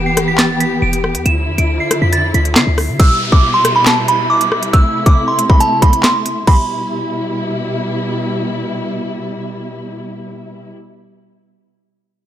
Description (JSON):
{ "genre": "hip hop, drill", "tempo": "138 BPM", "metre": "4/4", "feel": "half-time", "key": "E phrygian", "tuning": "A4 = 438 Hz", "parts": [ { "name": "dark symphonic string section", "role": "sustained chords", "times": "0.0-10.7 s", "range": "B2 to G4", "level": "-20 LUFS", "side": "equal", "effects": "none" }, { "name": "short 808-style bass", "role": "bass", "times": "0.0-3.0 s", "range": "E1 to D3", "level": "-17 LUFS", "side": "equal", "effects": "none" }, { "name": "delicate synth tine bell", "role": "melody", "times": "0.1-7.7 s", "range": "A5 to E7", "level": "-16 LUFS", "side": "right 2 dB", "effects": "chorus, low-pass filter, digital delay" }, { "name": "drill drum kit", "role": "drums", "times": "0.2-6.6 s", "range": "crash cymbal, handclaps, hi-hat, kick drum, rim click, snare drum", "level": "-13 LUFS", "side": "equal", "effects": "none" }, { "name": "downlifter", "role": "sound effects", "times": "3.0-6.5 s", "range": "none", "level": "-25 LUFS", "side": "equal", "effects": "none" } ], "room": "light reverb, digital ambience", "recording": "none", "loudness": "-12 LUFS", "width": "side -11 dB against mid", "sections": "0.0-3.0 A section; 3.0-6.5 B section; 6.5-10.0 C section", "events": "none", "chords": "0.0 Em; 1.3 Dmadd9; 3.0 Em; 4.7 Am; 6.5 Em", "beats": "0.39 0.82 | 1.26 1.69 2.13 2.56 | 3.00 3.43 3.87 4.30 | 4.74 5.17 5.61 6.04 | 6.47 6.91 7.34 7.78 | 8.21 8.65 9.08 9.52" }